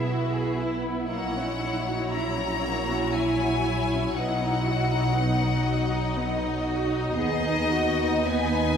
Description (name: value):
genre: classical, slow romantic movement for string orchestra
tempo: 59 BPM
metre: 3/4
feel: rubato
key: B major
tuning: A4 = 444 Hz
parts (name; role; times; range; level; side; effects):
- clear studio violin section; melody; 0.0-8.8 s; D#5 to A#5; -30 LUFS; left 5 dB; none
- clear studio violin section; second line; 0.0-8.8 s; A#3 to D#5; -31 LUFS; left 3 dB; none
- rich studio viola section; accompaniment; 0.0-8.8 s; F#3 to E4; -29 LUFS; right 1 dB; none
- rich studio cello section; bass; 0.0-8.8 s; C#4 to B4; -33 LUFS; right 2 dB; none
- rich studio double bass section; bass; 0.0-8.8 s; A#1 to D#2; -29 LUFS; right 2 dB; none
room: wet concert hall reverb, RT60 1.9 s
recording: heard from further back in the room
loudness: -23 LUFS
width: side -7 dB against mid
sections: 0.0-8.8 A section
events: none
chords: 0.0 E/B; 1.1 F#7/A#; 4.1 B; 7.1 B/D#